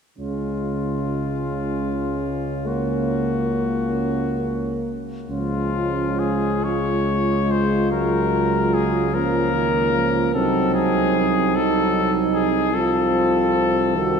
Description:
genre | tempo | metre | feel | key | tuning
classical, hymn-like piece for brass band | 42-51 BPM (dotted quarters) | 12/8 | rubato | Db major | A4 = 440 Hz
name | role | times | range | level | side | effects
clear cornet | melody | 0.2-14.2 s | F4 to Db5 | -25 LUFS | left 5 dB | none
mellow French horn section | second line | 0.2-14.2 s | Db4 to Gb4 | -25 LUFS | right 5 dB | none
clear trombone | accompaniment | 0.2-14.2 s | Db3 to Ab3 | -27 LUFS | right 3 dB | none
warm euphonium | accompaniment | 0.2-14.2 s | Ab3 to C4 | -26 LUFS | left 3 dB | none
mellow tuba | bass | 0.2-14.2 s | C2 to Db2 | -26 LUFS | equal | none
room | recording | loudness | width
wet cathedral reverb, RT60 5.4 s | recorded in a church or concert hall | -19 LUFS | side -6 dB against mid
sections
0.2-5.3 A section; 5.3-14.2 B section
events
none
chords
0.2 Db; 2.7 Gb/Db; 5.3 Db; 7.9 Ebm7/Db; 10.3 Cdim7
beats
| 0.18 1.45 2.67 3.93 | 5.30 6.65 7.92 9.14 | 10.35 11.56 12.74 13.97

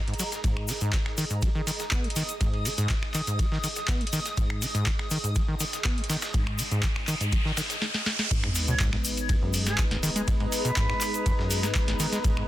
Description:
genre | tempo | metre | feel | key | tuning
acid house | 122 BPM | 4/4 | straight | G# minor | A4 = 442 Hz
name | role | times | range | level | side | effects
granular cloud pad | texture | 0.0-12.5 s | G#4 to D#6 | -37 LUFS | equal | built-in reverb, sidechain pumping
deep acid bass | riff | 0.1-12.4 s | G#1 to B3 | -30 LUFS | equal | digital delay
booming analog drum machine | drums | 0.1-12.5 s | crash cymbal, finger snaps, handclaps, hi-hat, snare drum | -31 LUFS | equal | none
dusty soul sampler-style drum kit | drums | 0.2-12.4 s | hi-hat, ride cymbal, snare drum | -38 LUFS | right 3 dB | high-pass filter on snare, sidechain pumping on cymbals, high-pass filter on cymbals, sidechain pumping on hats, high-pass filter on hats
egg shaker | percussion | 0.2-12.3 s | none | -36 LUFS | left 5 dB | none
electronic kick drum | drums | 0.4-12.3 s | none | -28 LUFS | equal | none
riser and sub drop | sound effects | 5.8-10.3 s | none | -33 LUFS | equal | none
warm analog pad | sustained chords | 8.3-12.5 s | G#3 to B4 | -34 LUFS | left 2 dB | chorus, sidechain pumping
silver concert flute | melody | 8.7-11.3 s | G#4 to C#5 | -34 LUFS | equal | ping-pong delay
room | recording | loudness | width
little or no reverb | dense, heavily limited modern master | -24 LUFS | side -14 dB against mid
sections
0.0-8.3 A section; 8.3-12.5 B section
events
riser 5.8-8.3; drum fill 7.8-8.3; drop 8.3-12.5; impact 8.3-10.3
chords
0.0 G#5; 8.3 G#m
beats
| 0.44 0.93 1.42 1.92 | 2.41 2.90 3.39 3.88 | 4.38 4.87 5.36 5.85 | 6.34 6.83 7.33 7.82 | 8.31 8.80 9.29 9.79 | 10.28 10.77 11.26 11.75 | 12.24

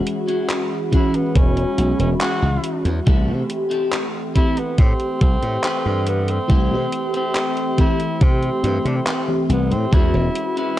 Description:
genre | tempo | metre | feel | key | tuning
vaporwave | 70 BPM | 4/4 | straight | unclear | A4 = 436 Hz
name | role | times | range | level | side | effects
FM electric piano with soft pad layer | accompaniment | 0.0-10.8 s | E3 to G4 | -23 LUFS | left 1 dB | ensemble chorus, tape echo
warbly tape-like pad | sustained chords | 0.0-10.8 s | G#4 to C#6 | -32 LUFS | right 4 dB | chorus, built-in reverb
gated 80s digital drum machine | drums | 0.1-10.7 s | handclaps, hi-hat | -27 LUFS | equal | gated reverb
clean electric guitar | riff | 0.3-10.8 s | C4 to C5 | -32 LUFS | left 1 dB | lush chorus, tape echo
warm tenor saxophone | melody | 0.9-10.8 s | B3 to F#4 | -26 LUFS | equal | vintage 12-bit sampler grit, tape echo
electronic kick drum | drums | 0.9-10.1 s | none | -16 LUFS | equal | overdrive
glassy slap bass | bass | 1.4-10.3 s | E1 to C3 | -20 LUFS | equal | tube saturation
room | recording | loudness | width
light reverb, digital ambience | dark, warm production | -17 LUFS | side -13 dB against mid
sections
0.0-10.8 A section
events
none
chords
0.0 E69; 3.1 C6; 9.9 E69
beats
0.50 1.36 2.21 | 3.07 3.93 4.79 5.64 | 6.50 7.36 8.21 9.07 | 9.93 10.79

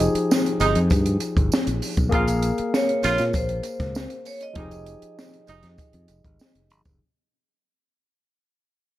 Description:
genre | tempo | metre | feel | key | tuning
lush 1970s-style soul | 98 BPM | 4/4 | straight | unclear | A4 = 440 Hz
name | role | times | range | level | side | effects
barky tine electric piano | accompaniment | 0.0-7.0 s | F3 to F5 | -27 LUFS | left 2 dB | overdrive
fingered electric bass | bass | 0.0-7.0 s | F1 to Bb2 | -24 LUFS | equal | none
compact cocktail drum kit | drums | 0.0-7.0 s | hi-hat, kick drum, snare drum | -24 LUFS | equal | none
tambourine | percussion | 0.3-7.0 s | none | -39 LUFS | right 6 dB | none
warm horn section | stabs | 0.6-5.7 s | C3 to F4 | -24 LUFS | right 4 dB | none
vibraphone with hard mallets | melody | 2.7-6.7 s | C5 to Eb5 | -28 LUFS | right 1 dB | none
room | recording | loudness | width
small room ambience | none | -20 LUFS | side -14 dB against mid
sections
0.0-7.0 A section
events
fade-out 0.0-7.0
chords
0.0 Fm9; 2.1 Bbm9; 4.6 Fm9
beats
0.30 0.91 1.52 | 2.12 2.73 3.34 3.95 | 4.56 5.17 5.79 6.39

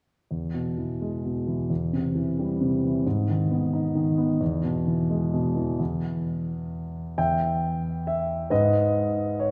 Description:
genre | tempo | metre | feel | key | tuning
classical, lyrical solo piano | 44 BPM (dotted quarters) | 6/8 | rubato | E major | A4 = 441 Hz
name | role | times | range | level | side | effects
warm concert grand piano | solo | 0.3-9.5 s | E2 to G5 | -26 LUFS | equal | none
room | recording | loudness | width
wet church reverb, RT60 3.1 s | recorded in a church or concert hall | -26 LUFS | mono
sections
0.3-5.8 A section; 5.8-9.5 B section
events
none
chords
0.3 E; 1.7 C/E; 3.1 G#m; 4.4 E; 5.8 N.C.; 8.5 G#m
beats
| 0.31 1.70 | 3.05 4.41 | 5.80 7.17 | 8.51

